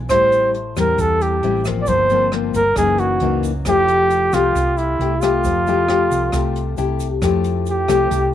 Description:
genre	bossa nova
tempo	135 BPM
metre	4/4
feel	straight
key	F major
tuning	A4 = 440 Hz
part	nylon-string guitar	accompaniment	0.0-8.3 s	Gb2 to G4	-21 LUFS	left 9 dB	none
part	hollow-body short-scale fingered electric bass	bass	0.0-8.3 s	F1 to F2	-23 LUFS	right 1 dB	none
part	mellow flugelhorn	melody	0.1-8.3 s	E4 to D5	-17 LUFS	right 1 dB	none
part	jazz brush drum kit	drums	0.1-8.2 s	hi-hat, kick drum, rim click	-29 LUFS	right 1 dB	none
part	tube shaker	percussion	0.1-8.3 s	none	-39 LUFS	right 18 dB	none
room	moderate spring reverb, RT60 1.7 s, small room ambience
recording	1960s-style stereo with parts hard left and right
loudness	-15 LUFS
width	side -11 dB against mid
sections	0.0-7.2 A section; 7.2-8.3 B section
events	flugelhorn solo 7.2-8.3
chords	0.1 Am7; 1.9 Gm7; 2.8 Gb6; 3.7 Fmaj9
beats	| 0.10 0.54 0.99 1.43 | 1.88 2.32 2.77 3.21 | 3.66 4.11 4.55 5.00 | 5.44 5.89 6.33 6.78 | 7.23 7.67 8.12

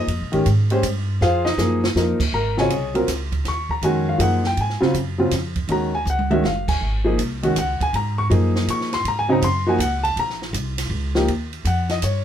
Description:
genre	modal jazz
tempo	161 BPM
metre	3/4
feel	swing 65% on 8ths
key	Ab mixolydian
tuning	A4 = 440 Hz
part	warm grand piano	accompaniment	0.0-12.2 s	Db3 to Db6	-20 LUFS	equal	none
part	upright bass	bass	0.0-12.2 s	Gb1 to Bb2	-23 LUFS	equal	none
part	compact cocktail drum kit	drums	0.1-12.1 s	crash cymbal, hi-hat, kick drum, ride cymbal, snare drum, toms	-28 LUFS	right 2 dB	none
room	moderate studio ambience, RT60 0.5 s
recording	band playing live in one room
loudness	-18 LUFS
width	side -9 dB against mid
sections	0.0-2.3 A section; 2.3-11.3 A section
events	drum fill 1.2-2.0, 6.1-6.4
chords	0.0 Fm; 4.6 Ebm7; 6.8 Ab7sus4; 9.1 Ebm7; 11.3 Eb7sus2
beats	| 0.09 0.46 0.83 | 1.21 1.58 1.96 | 2.33 2.70 3.08 | 3.45 3.83 4.20 | 4.57 4.95 5.32 | 5.69 6.07 6.44 | 6.82 7.19 7.56 | 7.93 8.31 8.68 | 9.05 9.43 9.80 | 10.17 10.55 10.92 | 11.29 11.66 12.04

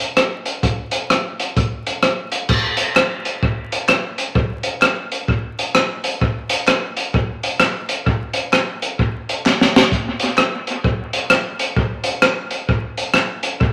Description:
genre	ska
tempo	130 BPM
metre	4/4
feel	swing 62% on 8ths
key	none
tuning	none
part	crunchy breakbeat drum kit	drums	0.0-13.7 s	crash cymbal, hi-hat, kick drum, rim click, snare drum	-19 LUFS	equal	dub echo
part	group handclap	percussion	3.0-13.3 s	none	-32 LUFS	equal	dub echo
room	moderate large studio reverb, RT60 0.9 s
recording	vinyl crackle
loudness	-19 LUFS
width	mono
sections	0.0-2.5 A section; 2.5-13.7 B section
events	drum fill 9.5-9.9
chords	none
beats	0.17 | 0.63 1.10 1.56 2.03 | 2.49 2.96 3.42 3.89 | 4.35 4.82 5.28 5.75 | 6.21 6.67 7.14 7.60 | 8.06 8.53 8.99 9.45 | 9.91 10.38 10.84 11.30 | 11.76 12.22 12.69 13.15 | 13.61

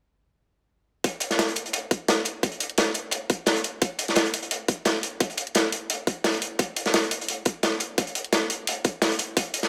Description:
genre	drum and bass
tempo	173 BPM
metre	4/4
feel	straight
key	none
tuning	none
part	crunchy breakbeat drum kit	drums	1.0-9.7 s	hi-hat, snare drum	-27 LUFS	equal	high-pass filter on hats, studio reverb, high-pass filter on snare, high-pass filter on room
part	electronic hi-hat	drums	1.0-9.7 s	none	-31 LUFS	equal	studio reverb
part	electronic kick drum	drums	1.0-9.4 s	none	-26 LUFS	equal	high-pass filter on kick, studio reverb
room	small room reverb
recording	none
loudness	-26 LUFS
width	mono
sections	1.0-9.7 A section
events	none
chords	none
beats	| 1.04 1.39 1.74 2.08 | 2.43 2.78 3.12 3.47 | 3.82 4.16 4.51 4.86 | 5.21 5.55 5.90 6.25 | 6.59 6.94 7.29 7.63 | 7.98 8.33 8.67 9.02 | 9.37

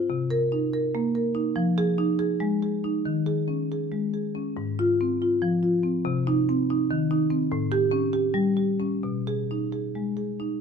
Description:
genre	classical, contemporary piece for solo marimba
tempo	282 BPM (eighths)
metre	7/8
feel	uneven beats, rubato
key	unclear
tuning	A4 = 440 Hz
part	marimba with medium mallets	solo	0.0-10.6 s	Ab2 to Bb4	-23 LUFS	equal	none
room	moderate stone room reverb, RT60 1.0 s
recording	minimal, uncompressed stereo recording, faint mains hum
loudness	-23 LUFS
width	side -6 dB against mid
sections	0.0-10.6 A section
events	none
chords	0.1 Cm7; 1.6 Fm7; 3.0 Eb7sus4; 4.6 Ab6; 6.1 Cm; 7.5 A7; 9.0 B6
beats	| 0.10 0.31 0.52 0.72 0.93 1.14 1.34 | 1.55 1.76 1.97 2.18 2.40 2.61 2.83 | 3.04 3.26 3.47 3.69 3.91 4.13 4.35 | 4.57 4.79 5.00 5.21 5.42 5.63 5.84 | 6.05 6.26 6.47 6.68 6.88 7.09 7.29 | 7.50 7.71 7.92 8.13 8.34 8.56 8.79 | 9.02 9.26 9.49 9.72 9.94 10.17 10.40

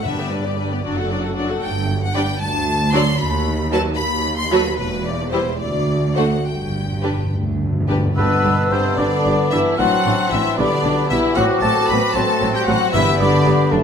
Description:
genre	quick classical-period movement for symphony orchestra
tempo	76 BPM (dotted quarters)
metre	6/8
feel	rubato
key	G major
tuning	A4 = 440 Hz
part	rich studio violin section	melody	0.0-13.7 s	B4 to C6	-24 LUFS	left 4 dB	none
part	rich studio violin section	second line	0.0-13.7 s	B3 to F#5	-26 LUFS	left 4 dB	none
part	rich studio viola section	accompaniment	0.0-13.8 s	F#3 to G4	-24 LUFS	right 2 dB	none
part	dark studio cello section	bass	0.1-13.8 s	D2 to B2	-25 LUFS	right 2 dB	none
part	warm studio double bass section	bass	0.1-13.8 s	E1 to D#2	-25 LUFS	right 3 dB	none
part	timpani	percussion	0.1-0.8, 6.5-8.9, 12.9-13.7 s	G2	-24 LUFS	left 1 dB	none
part	bright clarinet	second line	8.2-13.8 s	D4 to G4	-26 LUFS	equal	none
part	mellow hollow silver concert flute	second line	8.2-13.8 s	A5 to E6	-25 LUFS	left 2 dB	none
part	warm oboe	second line	8.2-13.7 s	B4 to B5	-24 LUFS	right 2 dB	none
part	mellow bassoon	accompaniment	8.2-13.8 s	A3 to C4	-23 LUFS	right 3 dB	none
part	mellow French horn section	sustained chords	8.2-13.7 s	B2 to B3	-22 LUFS	left 4 dB	none
room	wet recital hall reverb, RT60 1.5 s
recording	none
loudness	-16 LUFS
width	side -7 dB against mid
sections	0.0-8.2 A section; 8.2-13.8 A section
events	timpani fill 6.5-8.2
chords	0.1 G; 0.8 D/F#; 1.6 G5; 2.4 D; 3.2 B7/D#; 4.8 Em; 5.6 D; 6.5 G5; 8.2 G; 9.8 D7/A; 10.6 G; 11.4 F#dim/A; 12.9 G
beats	| 0.05 0.84 | 1.63 2.42 | 3.20 3.98 | 4.78 5.60 | 6.46 7.32 | 8.17 8.98 | 9.79 10.58 | 11.37 12.15 | 12.94 13.72

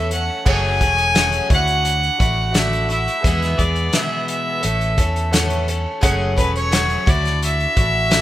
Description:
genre	folk rock and heartland rock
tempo	86 BPM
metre	4/4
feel	straight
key	unclear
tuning	A4 = 440 Hz
part	warm fiddle	melody	0.0-8.2 s	B4 to G#5	-20 LUFS	equal	analog delay
part	picked twelve-string acoustic guitar	accompaniment	0.0-8.2 s	E2 to A4	-25 LUFS	left 2 dB	none
part	warm grand piano	accompaniment	0.0-8.2 s	F#4 to F#5	-29 LUFS	right 4 dB	none
part	fingered electric bass	bass	0.0-8.2 s	E1 to E2	-21 LUFS	equal	none
part	loose indie drum kit	drums	0.1-8.2 s	crash cymbal, hi-hat, kick drum, snare drum	-20 LUFS	equal	none
room	small room ambience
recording	rough home demo mix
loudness	-16 LUFS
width	side -13 dB against mid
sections	0.0-8.2 A section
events	none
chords	0.5 F#madd9; 1.5 Dadd9; 3.2 E; 4.6 A; 6.0 F#madd9; 7.1 Dadd9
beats	| 0.46 1.16 1.85 2.55 | 3.24 3.94 4.63 5.33 | 6.03 6.72 7.42 8.11

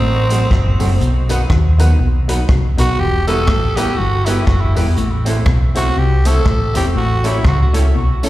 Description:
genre	ska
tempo	121 BPM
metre	4/4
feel	swing 59% on 8ths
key	unclear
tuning	A4 = 440 Hz
part	growling tenor saxophone	melody	0.0-7.7 s	C4 to A4	-21 LUFS	right 1 dB	dub echo, plate reverb, slapback echo
part	mellow electric guitar	riff	0.0-8.1 s	E2 to D#3	-22 LUFS	left 3 dB	wide subtle chorus, slapback echo
part	hollow-body short-scale fingered electric bass	bass	0.0-8.3 s	E1 to D#2	-15 LUFS	equal	none
part	mellow electric guitar	accompaniment	0.3-8.3 s	F#3 to A4	-25 LUFS	right 3 dB	wide subtle chorus, plate reverb, slapback echo
part	warm upright piano	stabs	0.3-8.3 s	B3 to C#5	-26 LUFS	left 3 dB	dub echo, plate reverb, slapback echo
part	vintage drum kit	drums	0.3-8.3 s	hi-hat, kick drum, rim click	-18 LUFS	equal	none
part	tambourine	percussion	0.3-8.3 s	none	-34 LUFS	right 2 dB	none
room	little or no reverb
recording	live gig heard through the venue's PA, recital hall reverb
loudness	-12 LUFS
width	side -16 dB against mid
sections	0.0-8.3 A section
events	tenor saxophone solo 0.0-8.3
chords	0.0 F#dim; 1.0 B; 3.0 Em; 5.0 Am; 7.0 A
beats	0.02 0.51 | 1.01 1.50 2.00 2.49 | 2.99 3.48 3.98 4.47 | 4.97 5.46 5.96 6.46 | 6.95 7.45 7.94

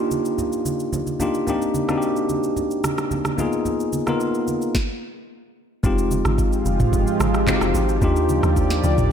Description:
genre	amapiano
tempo	110 BPM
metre	4/4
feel	straight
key	unclear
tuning	A4 = 440 Hz
part	bell-like tine electric piano	accompaniment	0.0-9.1 s	Ab3 to Bb4	-22 LUFS	left 1 dB	none
part	downlifter	sound effects	0.0-1.5 s	none	-46 LUFS	right 1 dB	none
part	smooth R&B drum kit	drums	0.1-9.1 s	handclaps, kick drum, rim click, shaker, snare drum, toms	-25 LUFS	equal	none
part	congas	percussion	0.1-9.0 s	none	-30 LUFS	right 3 dB	none
part	lush unison pad	sustained chords	6.2-9.1 s	F3 to D5	-24 LUFS	right 2 dB	chorus
part	deep log drum bass	bass	5.8-9.1 s	F1 to Eb2	-22 LUFS	equal	none
room	moderate lush hall reverb, RT60 1.7 s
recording	dreamy mix soaked in reverb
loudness	-19 LUFS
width	side -8 dB against mid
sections	0.0-5.8 A section; 5.8-9.1 B section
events	stop 4.7-5.8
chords	0.0 Ebmaj7; 1.5 Cm7; 3.4 Abm6; 5.8 Fm9; 8.0 Ebmaj7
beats	0.38 0.93 | 1.48 2.02 2.57 3.11 | 3.66 4.20 4.75 5.29 | 5.84 6.38 6.93 7.47 | 8.02 8.57 9.11

